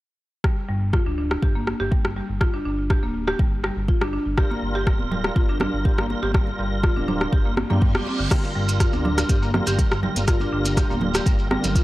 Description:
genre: afro house.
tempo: 122 BPM.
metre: 4/4.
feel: straight.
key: G minor pentatonic.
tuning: A4 = 440 Hz.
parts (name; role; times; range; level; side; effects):
buzzing marimba with medium hard mallets; arpeggios; 0.4-11.8 s; D3 to G4; -27 LUFS; left 1 dB; sidechain pumping, low-pass filter, tape echo.
afro-pop drum kit; drums; 0.4-11.8 s; crash cymbal, hi-hat, rim click; -28 LUFS; equal; none.
electronic kick drum; drums; 0.4-11.8 s; none; -20 LUFS; equal; none.
smooth synth bass; bass; 0.7-11.8 s; D1 to G2; -27 LUFS; equal; sidechain pumping.
tonewheel organ; stabs; 4.4-11.8 s; G3 to Bb4; -30 LUFS; right 2 dB; chorus vibrato, slow rotary speaker, sidechain pumping, tape echo.
congas; percussion; 4.5-11.8 s; none; -28 LUFS; right 3 dB; none.
reverse cymbal; sound effects; 7.7-8.3 s; none; -35 LUFS; right 6 dB; none.
warm analog pad; sustained chords; 8.3-11.8 s; D3 to G4; -33 LUFS; equal; chorus, sidechain pumping.
shekere; percussion; 8.3-11.8 s; none; -34 LUFS; right 1 dB; none.
room: digital ambience.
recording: dry, gritty hardware recording.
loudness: -19 LUFS.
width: side -17 dB against mid.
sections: 0.4-8.3 A section; 8.3-11.8 B section.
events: filter sweep on analog synth bass 0.4-8.3; reverse cymbal 7.7-8.3.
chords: 0.4 Gm7.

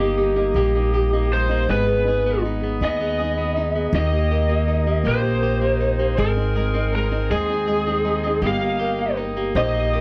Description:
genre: six-eight pop ballad.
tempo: 53 BPM (dotted quarters).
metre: 6/8.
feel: straight.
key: Eb major.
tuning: A4 = 440 Hz.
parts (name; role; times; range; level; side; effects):
lead guitar through a small cranked amp; melody; 0.0-10.0 s; G4 to F5; -25 LUFS; equal; overdrive.
warm upright piano; accompaniment; 0.0-10.0 s; Eb3 to C5; -28 LUFS; equal; none.
mellow tonewheel organ; sustained chords; 0.0-10.0 s; G4 to Eb6; -34 LUFS; equal; slow rotary speaker.
electric guitar at the edge of break-up; arpeggios; 0.0-10.0 s; Bb3 to Ab4; -32 LUFS; equal; spring reverb.
upright bass; bass; 0.0-10.0 s; G1 to Eb2; -25 LUFS; equal; none.
room: light reverb.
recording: dry, close 1970s-style studio recording.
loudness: -21 LUFS.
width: mono.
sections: 0.0-10.0 A section.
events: none.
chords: 0.0 Eb/G; 1.7 Abm; 3.9 Eb; 6.2 Ab; 8.4 Eb/G.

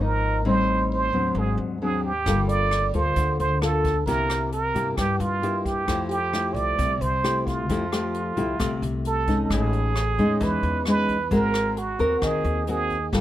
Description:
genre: bossa nova.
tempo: 132 BPM.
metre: 4/4.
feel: straight.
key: unclear.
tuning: A4 = 440 Hz.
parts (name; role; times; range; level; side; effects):
trumpet with plunger mute; melody; 0.0-13.2 s; F4 to D5; -26 LUFS; right 4 dB; none.
nylon-string guitar; accompaniment; 0.0-13.2 s; G2 to Bb4; -25 LUFS; left 2 dB; none.
upright bass; bass; 0.0-13.2 s; G1 to G2; -28 LUFS; equal; none.
jazz brush drum kit; drums; 2.3-13.2 s; hi-hat, kick drum, rim click; -32 LUFS; equal; none.
room: little or no reverb.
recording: none.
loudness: -21 LUFS.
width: side -13 dB against mid.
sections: 0.0-9.5 A section; 9.5-13.2 B section.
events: none.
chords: 0.4 Am7b5; 1.4 Ab7#11; 2.3 Gm9; 4.1 C7; 5.9 Fmaj9; 9.5 Amaj9#11; 11.3 Ab9.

